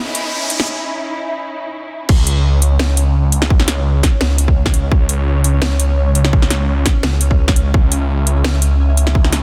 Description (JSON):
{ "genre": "half-time drum and bass", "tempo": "170 BPM", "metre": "4/4", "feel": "swing 54% on 16ths, half-time", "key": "C# minor", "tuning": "A4 = 440 Hz", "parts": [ { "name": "rich studio string section", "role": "sustained chords", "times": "0.0-2.1 s", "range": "C#4 to E4", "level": "-26 LUFS", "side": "equal", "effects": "sidechain pumping, low-pass filter" }, { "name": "riser", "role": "sound effects", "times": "0.0-0.7 s", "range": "none", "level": "-25 LUFS", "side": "equal", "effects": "none" }, { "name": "drum and bass drum kit", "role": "drums", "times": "0.1-9.4 s", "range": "crash cymbal, hi-hat, snare drum", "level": "-22 LUFS", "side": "equal", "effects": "soft clipping on snare" }, { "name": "phased detuned saw bass", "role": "bass", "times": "2.1-9.4 s", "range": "C#2", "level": "-16 LUFS", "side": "equal", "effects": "phaser" }, { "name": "electronic kick drum", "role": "drums", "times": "2.1-9.2 s", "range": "none", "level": "-15 LUFS", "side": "equal", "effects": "none" }, { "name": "pulsing gated texture", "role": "texture", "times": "2.1-9.4 s", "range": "C#4 to E5", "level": "-30 LUFS", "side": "equal", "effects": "chorus, built-in reverb" } ], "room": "digital ambience", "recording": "dense, heavily limited modern master", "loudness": "-15 LUFS", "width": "mono", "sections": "0.0-2.1 A section; 2.1-9.4 B section", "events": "build-up 0.0-2.1; riser 0.0-0.7; break 0.7-2.1; drop 2.1-9.4", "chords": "0.0 C#madd9; 2.1 C#m" }